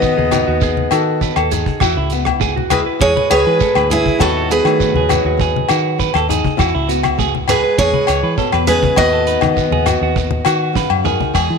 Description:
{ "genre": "highlife guitar band", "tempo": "101 BPM", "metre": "4/4", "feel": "straight", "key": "unclear", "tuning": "A4 = 442 Hz", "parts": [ { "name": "picked steel-string acoustic guitar", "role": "melody", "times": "0.0-10.7 s", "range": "E4 to D#5", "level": "-17 LUFS", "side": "right 2 dB", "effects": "none" }, { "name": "growling alto saxophone", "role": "second line", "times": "0.0-10.7 s", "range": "E3 to B3", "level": "-24 LUFS", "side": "left 9 dB", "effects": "none" }, { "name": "flamenco guitar", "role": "accompaniment", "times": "0.0-11.6 s", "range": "E2 to A4", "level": "-24 LUFS", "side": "left 11 dB", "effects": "none" }, { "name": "clean electric guitar", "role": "arpeggios", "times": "0.0-11.6 s", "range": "A3 to C#5", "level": "-21 LUFS", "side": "right 10 dB", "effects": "tape echo" }, { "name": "fingered electric bass", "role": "bass", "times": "0.0-11.6 s", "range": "C#2 to E3", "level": "-20 LUFS", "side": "equal", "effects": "none" }, { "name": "damped 70s drum kit", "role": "drums", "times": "0.0-11.5 s", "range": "crash cymbal, hi-hat, kick drum, rim click, snare drum, toms", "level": "-23 LUFS", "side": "right 3 dB", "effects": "none" }, { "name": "shekere", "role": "percussion", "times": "0.0-11.5 s", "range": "none", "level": "-26 LUFS", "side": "right 9 dB", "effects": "none" }, { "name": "congas", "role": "percussion", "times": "0.2-11.3 s", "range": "none", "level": "-23 LUFS", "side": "left 6 dB", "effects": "none" }, { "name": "agogo bells", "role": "percussion", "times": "0.3-11.5 s", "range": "none", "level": "-21 LUFS", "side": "left 13 dB", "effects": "none" } ], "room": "moderate plate reverb, RT60 2.3 s", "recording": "1960s-style stereo with parts hard left and right", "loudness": "-13 LUFS", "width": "side -5 dB against mid", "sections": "0.0-11.3 A section", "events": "drum fill 10.8-11.3", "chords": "0.0 B7/D#; 1.8 E; 4.2 B7/D#; 6.6 Eadd9; 9.0 B/D#", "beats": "0.03 0.63 1.22 | 1.82 2.42 3.01 3.61 | 4.20 4.80 5.39 5.99 | 6.59 7.18 7.78 8.37 | 8.97 9.56 10.16 10.75 | 11.35" }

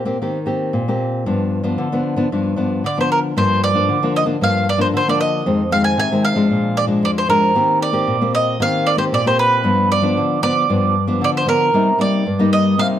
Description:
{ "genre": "samba", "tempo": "115 BPM", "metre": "4/4", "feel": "straight", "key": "G minor", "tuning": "A4 = 440 Hz", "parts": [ { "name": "nylon-string guitar", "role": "accompaniment", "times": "0.0-13.0 s", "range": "F2 to G4", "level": "-17 LUFS", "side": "left 2 dB", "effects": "none" }, { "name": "bowl-back mandolin", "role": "melody", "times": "2.9-12.9 s", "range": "Bb4 to Ab5", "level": "-17 LUFS", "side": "right 2 dB", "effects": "none" } ], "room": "moderate studio reverb, RT60 0.8 s", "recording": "dark, warm production", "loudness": "-15 LUFS", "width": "side -10 dB against mid", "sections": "0.0-3.4 A section; 3.4-13.0 B section", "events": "none", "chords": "0.0 Eb6; 1.3 G7; 3.4 Gm7; 5.5 Fm7; 6.5 Bb7; 7.6 Eb6; 9.6 G7; 11.7 Cm7", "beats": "0.23 0.75 | 1.27 1.80 2.32 2.85 | 3.37 3.89 4.42 4.94 | 5.46 5.99 6.51 7.03 | 7.55 8.08 8.60 9.12 | 9.64 10.17 10.69 11.21 | 11.73 12.26 12.78" }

